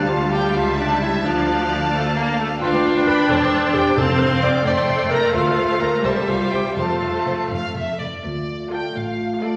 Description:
quick classical-period movement for symphony orchestra; 87 BPM (dotted quarters); 6/8; rubato; F major; A4 = 443 Hz
rich chamber violin section; melody; 0.0-9.6 s; D5 to D6; -31 LUFS; equal
dark clarinet; second line; 0.0-7.5 s; D4 to D5; -24 LUFS; equal
rich chamber violin section; second line; 0.0-9.6 s; A4 to A5; -27 LUFS; equal
clear studio viola section; accompaniment; 0.0-9.6 s; F3 to F4; -24 LUFS; equal
clear studio cello section; bass; 0.0-9.5 s; C2 to A2; -32 LUFS; equal
rich chamber double bass section; bass; 0.0-9.5 s; E1 to D2; -31 LUFS; equal
timpani; percussion; 4.0-4.6 s; F2; -28 LUFS; equal
mellow French horn section; sustained chords; 8.2-9.6 s; A3 to F4; -28 LUFS; equal
wet recital hall reverb, RT60 1.7 s; -20 LUFS; mono
0.0-8.2 A section; 8.2-9.6 B section
0.0 Dm; 0.6 A/C#; 1.2 Dm; 2.6 G7/D; 3.3 C/E; 4.0 F5; 4.7 G5/F; 5.3 Dm7; 6.0 C; 6.8 F; 8.2 Dm
0.56 | 1.25 1.93 | 2.62 3.30 | 3.98 4.66 | 5.35 6.05 | 6.77 7.51 | 8.25 8.95

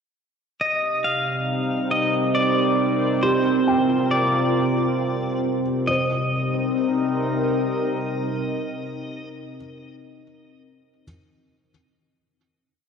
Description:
ambient; 68 BPM; 3/4; straight; C minor; A4 = 439 Hz
pedal steel guitar; melody; 0.6-9.3 s; C5 to F5; -25 LUFS; left 1 dB; ping-pong delay
warbly tape-like pad; sustained chords; 1.2-9.3 s; C3 to Eb5; -22 LUFS; equal; chorus, built-in reverb
analog drone; drone; 0.8-9.4 s; C3 to G3; -32 LUFS; left 1 dB; chorus
felt-muted upright piano; arpeggios; 3.2-11.1 s; G4 to G5; -29 LUFS; equal; ping-pong delay
wet lush hall reverb, RT60 2.9 s; dark, warm production; -20 LUFS; side -6 dB against mid
0.6-5.9 A section; 5.9-8.5 final chord
fade-out on synth drone 0.6-5.9
0.6 Cm7; 3.2 Bb/C; 5.9 Cm7
| 0.59 1.47 2.35 | 3.23 4.12 5.00 | 5.88 6.76 7.65

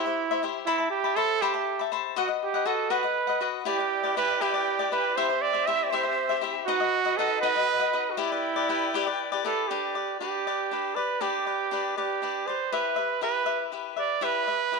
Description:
mexican folk, mariachi; 80 BPM (dotted quarters); 6/8; straight; E minor, G major from 9.7 s; A4 = 440 Hz
warm trumpet; melody; 0.0-14.8 s; E4 to E5; -27 LUFS; right 8 dB
cavaquinho; accompaniment; 0.0-14.8 s; D4 to B5; -28 LUFS; left 14 dB
breathy bright flute section; sustained chords; 3.7-9.7 s; C4 to G5; -33 LUFS; left 1 dB
moderate echo chamber reverb, RT60 1.9 s, small room ambience; 1960s-style stereo with parts hard left and right; -24 LUFS; side -3 dB against mid
0.0-9.7 A section; 9.7-14.8 B section
0.0 C; 0.7 Amadd9; 2.2 B; 3.7 Em7; 5.2 C; 6.7 B; 8.2 Em7; 9.7 G; 12.7 Em
| 0.67 1.41 | 2.16 2.92 | 3.67 4.43 | 5.18 5.93 | 6.67 7.42 | 8.17 8.93 | 9.70 10.46 | 11.21 11.97 | 12.72 13.46 | 14.21

